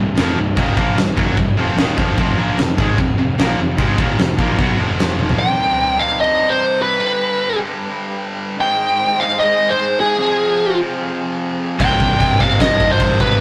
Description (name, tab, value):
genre	heavy metal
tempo	150 BPM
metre	4/4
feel	straight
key	C minor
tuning	A4 = 440 Hz
part	heavy high-gain guitar	riff	0.0-13.4 s	C2 to B3	-25 LUFS	equal	distortion
part	high-gain distorted guitar	riff	0.0-5.4, 11.8-13.4 s	C2 to B3	-23 LUFS	equal	distortion
part	fuzz picked electric bass	bass	0.0-5.3, 11.8-13.4 s	C1 to B1	-24 LUFS	equal	overdrive
part	big rock drum kit	drums	0.2-5.4, 11.8-13.3 s	china cymbal, crash cymbal, kick drum, snare drum, toms	-20 LUFS	equal	none
part	dark chamber string section	sustained chords	2.2-13.4 s	C3 to G5	-32 LUFS	equal	none
part	high-gain lead guitar	melody	5.4-13.4 s	Ab4 to G5	-18 LUFS	equal	distortion
room	moderate stone room reverb, RT60 1.2 s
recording	rough rehearsal-room recording, tube saturation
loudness	-17 LUFS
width	mono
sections	0.0-5.4 A section; 5.4-13.4 B section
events	drum fill 5.2; half time 5.4-13.4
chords	0.0 Cm; 2.2 F5; 5.4 Cm; 7.0 G; 8.6 Ab; 10.2 Fm; 11.8 Cm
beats	0.17 | 0.57 0.97 1.38 1.78 | 2.18 2.58 2.98 3.38 | 3.79 4.19 4.59 4.99 | 5.39 5.79 6.19 6.59 | 7.00 7.40 7.80 8.20 | 8.60 9.00 9.40 9.80 | 10.20 10.60 11.00 11.40 | 11.80 12.20 12.60 13.00 | 13.40